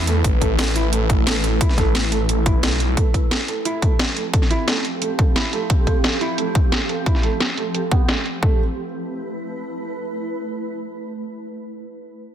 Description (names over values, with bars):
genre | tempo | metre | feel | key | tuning
dark technical drum and bass | 176 BPM | 4/4 | straight | A minor | A4 = 440 Hz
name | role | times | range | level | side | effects
swarming drone | sustained chords | 0.0-11.5 s | F3 to B4 | -27 LUFS | right 1 dB | built-in reverb, sidechain pumping
snarling distorted saw bass | bass | 0.0-3.0 s | A1 to E2 | -20 LUFS | equal | distortion, tube saturation
felt-muted upright piano | arpeggios | 0.1-8.6 s | A3 to A4 | -26 LUFS | right 4 dB | sidechain pumping, low-pass filter, tape echo
drum and bass drum kit | drums | 0.1-8.3 s | hi-hat, snare drum | -23 LUFS | equal | overdrive, low-pass filter on hats, low-pass filter on perc, low-pass filter on snare, low-pass filter on toms
electronic kick drum | drums | 0.2-8.5 s | none | -18 LUFS | equal | none
room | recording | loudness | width
light reverb | dense, heavily limited modern master | -18 LUFS | side -10 dB against mid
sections
0.0-8.4 A section; 8.4-11.2 B section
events
none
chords
0.0 A5; 3.0 F; 8.4 A5